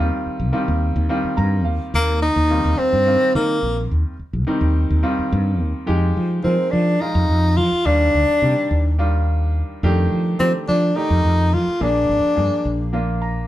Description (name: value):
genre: electric jazz fusion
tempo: 213 BPM (eighths)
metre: 7/8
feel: straight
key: unclear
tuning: A4 = 439 Hz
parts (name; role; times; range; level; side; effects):
- clear grand piano; accompaniment; 0.0-13.5 s; Eb3 to Bb5; -24 LUFS; equal; none
- mellow fretless electric bass; bass; 0.0-13.5 s; Ab1 to F3; -19 LUFS; equal; none
- breathy tenor saxophone; melody; 1.9-12.9 s; Bb3 to F4; -18 LUFS; left 1 dB; none
room: moderate studio reverb, RT60 0.6 s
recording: band playing live in one room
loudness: -16 LUFS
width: side -14 dB against mid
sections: 0.0-5.9 A section; 5.9-13.5 B section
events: tenor saxophone solo 0.0-5.9; grand piano fill 1.1-1.9, 12.9-13.5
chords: 0.0 Eb69; 5.9 Fm9; 7.9 Ebmaj9; 9.8 F13; 11.8 Bb7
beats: 0.25 0.53 0.81 1.09 1.37 1.65 | 1.94 2.22 2.50 2.78 3.06 3.34 3.62 | 3.91 4.19 4.47 4.75 5.03 5.32 5.60 | 5.88 6.16 6.44 6.72 7.01 7.29 7.57 | 7.85 8.14 8.42 8.70 8.98 9.27 9.55 | 9.83 10.11 10.39 10.68 10.96 11.24 11.52 | 11.80 12.09 12.37 12.65 12.93 13.21